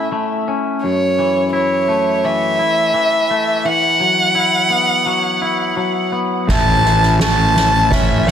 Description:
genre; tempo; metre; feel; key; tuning
post-rock; 85 BPM; 4/4; straight; A major; A4 = 439 Hz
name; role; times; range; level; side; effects
rich violin; melody; 0.0-8.3 s; C#5 to A5; -16 LUFS; right 1 dB; digital delay
twangy electric guitar; arpeggios; 0.0-8.3 s; F#2 to E4; -19 LUFS; left 3 dB; digital delay
felt-muted upright piano; arpeggios; 6.5-8.3 s; A4 to E5; -29 LUFS; right 4 dB; digital delay
fuzz picked electric bass; bass; 6.5-8.3 s; A1; -16 LUFS; right 1 dB; overdrive
soft-mallet drum kit; drums; 6.5-8.3 s; crash cymbal, kick drum, snare drum; -18 LUFS; right 1 dB; none
room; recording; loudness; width
moderate huge ambient reverb, RT60 4.4 s; none; -13 LUFS; side -8 dB against mid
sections
0.0-6.5 A section; 6.5-8.3 B section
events
none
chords
0.0 A; 0.8 F#m7; 3.7 Esus2; 6.5 A

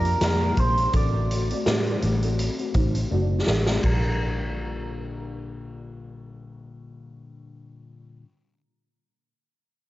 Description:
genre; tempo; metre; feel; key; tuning
indie pop, bedroom pop; 83 BPM; 4/4; swing 55% on 16ths; Bb major; A4 = 441 Hz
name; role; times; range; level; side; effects
electric guitar through a small old amp; melody; 0.0-8.2 s; Bb4 to D5; -29 LUFS; right 2 dB; wide subtle chorus, low-pass filter, cassette tape, tape echo
kalimba; second line; 0.0-6.0 s; C4 to F#5; -34 LUFS; right 5 dB; ensemble chorus, cassette tape, tape echo
fingerpicked steel-string acoustic guitar; accompaniment; 0.0-8.3 s; A2 to G4; -33 LUFS; left 5 dB; wide subtle chorus, warbly pitch drift, low-pass filter, cassette tape
vintage muted fingered electric bass; bass; 0.0-8.2 s; F#1 to A2; -25 LUFS; equal; none
raw garage drum kit; drums; 0.0-4.0 s; crash cymbal, hi-hat, kick drum, snare drum; -26 LUFS; equal; cassette tape
room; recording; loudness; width
light reverb, studio reverb; home recording on cassette, nothing above 7.7 kHz; -21 LUFS; side -16 dB against mid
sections
0.0-3.8 A section; 3.8-6.7 B section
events
filter sweep 0.0-3.8; drum fill 3.1-3.8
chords
0.0 Bb6; 0.9 D7/A; 3.8 Bb6

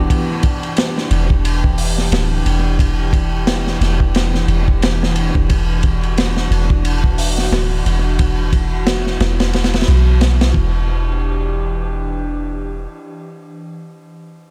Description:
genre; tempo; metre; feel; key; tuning
trip hop; 89 BPM; 4/4; swing 58% on 16ths; E minor; A4 = 441 Hz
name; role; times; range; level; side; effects
warbly tape-like pad; sustained chords; 0.0-13.6 s; E3 to G4; -26 LUFS; equal; chorus, built-in reverb
soft 808-style bass; bass; 0.0-12.9 s; D1 to B1; -19 LUFS; equal; tube saturation
crunchy breakbeat drum kit; drums; 0.1-10.7 s; hi-hat, kick drum, ride cymbal, snare drum; -20 LUFS; equal; dub echo
room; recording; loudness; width
small room reverb; echo-heavy mix; -16 LUFS; mono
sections
0.0-10.9 A section; 10.9-13.6 B section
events
none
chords
0.1 Em7; 5.5 Dadd9; 10.5 Em7

